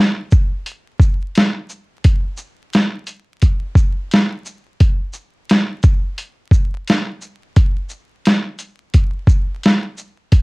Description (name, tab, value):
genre	hip hop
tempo	87 BPM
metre	4/4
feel	swing 60% on 16ths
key	none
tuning	none
part	boom bap sampler-style drum kit	drums	0.3-10.4 s	hi-hat, kick drum, shaker, snare drum	-13 LUFS	equal	cassette tape
room	wet small room reverb, RT60 0.5 s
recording	home recording on cassette, vinyl crackle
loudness	-14 LUFS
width	side -28 dB against mid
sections	0.0-10.4 A section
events	none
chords	none